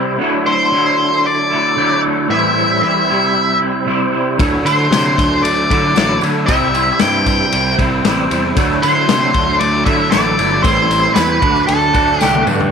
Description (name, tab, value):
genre	psychedelic rock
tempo	115 BPM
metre	4/4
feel	straight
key	unclear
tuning	A4 = 439 Hz
part	tonewheel organ	sustained chords	0.0-12.7 s	F#3 to C5	-26 LUFS	right 14 dB	slow rotary speaker
part	twangy electric guitar	riff	0.0-12.7 s	A2 to F#4	-16 LUFS	equal	rotary speaker, double-tracked left and right
part	octave-fuzz lead guitar	melody	0.5-12.4 s	A4 to G5	-15 LUFS	equal	distortion, tape echo
part	fuzz picked electric bass	bass	4.4-12.7 s	G1 to D3	-20 LUFS	right 1 dB	overdrive
part	vintage drum kit	drums	4.4-12.7 s	kick drum, ride cymbal, snare drum, toms	-19 LUFS	left 3 dB	none
part	tambourine	percussion	4.4-12.6 s	none	-33 LUFS	left 17 dB	none
room	light reverb, small room ambience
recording	1960s-style stereo with parts hard left and right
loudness	-12 LUFS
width	side -6 dB against mid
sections	0.0-12.7 A section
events	drum fill 12.2-12.7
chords	0.2 Dadd9; 2.3 Am7; 3.1 C; 4.4 Dadd9; 6.5 C; 8.6 Dadd9; 10.7 Am7; 11.4 D